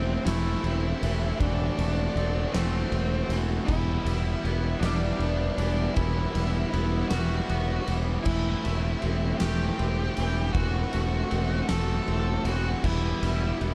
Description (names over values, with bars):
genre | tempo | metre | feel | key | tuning
post-rock | 52 BPM (dotted quarters) | 6/8 | straight | E minor | A4 = 439 Hz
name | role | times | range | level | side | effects
octave-fuzz lead guitar | melody | 0.0-13.6 s | C4 to A4 | -35 LUFS | equal | distortion, digital delay
twangy electric guitar | arpeggios | 0.0-13.7 s | E2 to C4 | -40 LUFS | equal | subtle chorus, digital delay
distorted electric guitar | riff | 0.0-13.7 s | E3 to A4 | -38 LUFS | equal | distortion
thick fuzz guitar | riff | 0.0-13.7 s | E3 to F#4 | -37 LUFS | equal | distortion
modern bright fingered electric bass | bass | 0.0-13.7 s | E1 | -30 LUFS | equal | none
oversized low-tuned drum kit | drums | 0.3-13.7 s | crash cymbal, kick drum, ride cymbal, snare drum | -35 LUFS | equal | none
room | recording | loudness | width
small room ambience | dark, warm production | -27 LUFS | mono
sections
0.0-13.7 A section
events
none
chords
0.0 Am/E; 1.4 F#dim/E; 3.7 Em; 8.3 Am/E; 10.6 F#dim/E; 12.8 Em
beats
0.27 | 1.41 2.55 | 3.70 4.84 | 5.98 7.12 | 8.27 9.41 | 10.55 11.70 | 12.84